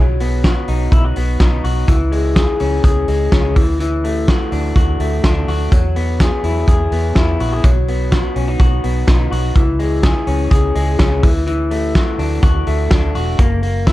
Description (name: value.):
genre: jangly indie pop.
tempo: 125 BPM.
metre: 4/4.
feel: straight.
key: unclear.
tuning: A4 = 439 Hz.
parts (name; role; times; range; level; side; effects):
electric guitar through a small old amp; arpeggios; 0.0-13.9 s; E3 to G#4; -19 LUFS; left 2 dB; tape echo.
vintage muted fingered electric bass; bass; 0.0-13.9 s; E1 to E2; -18 LUFS; equal; none.
loose indie drum kit; drums; 0.2-13.9 s; hi-hat, kick drum, snare drum; -15 LUFS; equal; none.
room: little or no reverb.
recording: dark, warm production.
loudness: -13 LUFS.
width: side -16 dB against mid.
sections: 0.0-13.9 A section.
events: none.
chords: 0.0 B; 1.9 C#m; 3.6 Dadd9; 5.7 Eadd9; 7.6 B; 9.6 C#m; 11.2 Dadd9; 13.4 F#.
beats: 0.44 0.93 1.41 | 1.89 2.37 2.85 3.33 | 3.81 4.28 4.76 5.24 | 5.72 6.20 6.68 7.16 | 7.64 8.12 8.60 9.08 | 9.56 10.04 10.51 10.99 | 11.47 11.95 12.43 12.91 | 13.39 13.87.